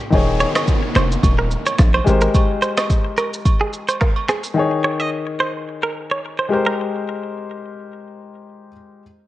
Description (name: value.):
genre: afrobeats.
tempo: 108 BPM.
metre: 4/4.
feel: swing 55% on 16ths.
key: Ab major.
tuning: A4 = 441 Hz.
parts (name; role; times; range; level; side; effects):
warm baby grand piano; accompaniment; 0.0-9.0 s; Eb3 to Db5; -22 LUFS; left 4 dB; none.
hard-hitting 808-style bass; bass; 0.1-2.3 s; Eb1 to Bb1; -18 LUFS; equal; none.
afro-pop drum kit; drums; 0.1-4.6 s; finger snaps, kick drum, rim click, shaker; -18 LUFS; equal; none.
agogo bells and woodblock; percussion; 0.1-4.3 s; none; -29 LUFS; right 5 dB; none.
downlifter; sound effects; 0.1-4.6 s; none; -29 LUFS; equal; none.
direct-recorded clean electric guitar; riff; 0.4-6.8 s; Ab4 to Eb5; -22 LUFS; right 2 dB; spring reverb, ping-pong delay.
room: light reverb, digital ambience.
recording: worn, warbling old tape, cassette tape, warbly pitch drift.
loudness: -16 LUFS.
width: side -15 dB against mid.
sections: 0.1-9.0 A section.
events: none.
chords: 0.1 Eb7sus4; 2.1 Abmaj9; 4.6 Eb7sus4; 6.5 Abmaj9.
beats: | 0.12 0.68 1.23 1.79 | 2.35 2.90 3.46 4.01 | 4.57 5.12 5.68 6.23 | 6.79 7.35 7.90 8.46.